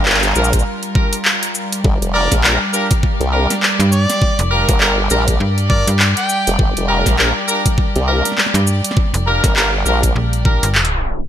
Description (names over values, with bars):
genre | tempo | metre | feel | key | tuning
glitch hop | 101 BPM | 4/4 | swing 59% on 16ths | G minor pentatonic | A4 = 440 Hz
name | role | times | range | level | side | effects
warm chamber string section | sustained chords | 0.0-11.3 s | G3 to D5 | -23 LUFS | equal | vintage 12-bit sampler grit, sidechain pumping
warm horn section | stabs | 0.0-10.7 s | D4 to Bb4 | -20 LUFS | equal | sidechain pumping, ping-pong delay
formant-sweep wobble bass | bass | 0.0-10.1 s | F1 to C2 | -17 LUFS | equal | chorus, tube saturation
drum and bass drum kit | drums | 0.1-11.3 s | handclaps, hi-hat, shaker, snare drum | -17 LUFS | equal | overdrive, gated reverb
electronic kick drum | drums | 0.5-10.6 s | none | -16 LUFS | equal | overdrive
warm harmonica | melody | 2.1-6.6 s | D5 to G5 | -22 LUFS | right 1 dB | ping-pong delay
slap-like FM bass | bass | 3.8-11.0 s | F1 to G2 | -16 LUFS | equal | none
room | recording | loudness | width
light reverb, digital ambience | bright 1980s-style digital production, tape stop | -13 LUFS | side -10 dB against mid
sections
0.0-11.3 A section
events
tape stop 10.8-11.3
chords
0.0 Gm7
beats
0.06 0.65 1.25 | 1.84 2.43 3.03 3.62 | 4.22 4.81 5.41 6.00 | 6.59 7.19 7.78 8.38 | 8.97 9.56 10.16 10.75